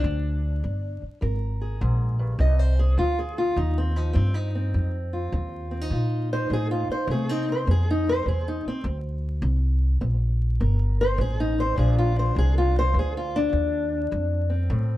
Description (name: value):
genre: acoustic country blues, solo or duo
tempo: 102 BPM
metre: 4/4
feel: swing 66% on 8ths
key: unclear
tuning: A4 = 440 Hz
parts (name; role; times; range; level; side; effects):
- fingerpicked steel-string acoustic guitar; melody; 0.0-15.0 s; F2 to Eb5; -26 LUFS; left 1 dB; slapback echo
- upright bass; bass; 0.0-15.0 s; G1 to C3; -23 LUFS; equal; none
room: light reverb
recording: dark, warm production, vinyl crackle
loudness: -22 LUFS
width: side -15 dB against mid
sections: 0.0-15.0 A section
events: steel-string acoustic guitar solo 0.0-15.0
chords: 0.0 Bb7; 2.4 F7; 7.1 C7; 11.8 Bb; 14.1 F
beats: | 0.03 0.62 1.21 1.80 | 2.39 2.98 3.56 4.15 | 4.74 5.33 5.91 6.50 | 7.09 7.67 8.26 8.85 | 9.43 10.02 10.60 11.19 | 11.78 12.36 12.95 13.53 | 14.12 14.70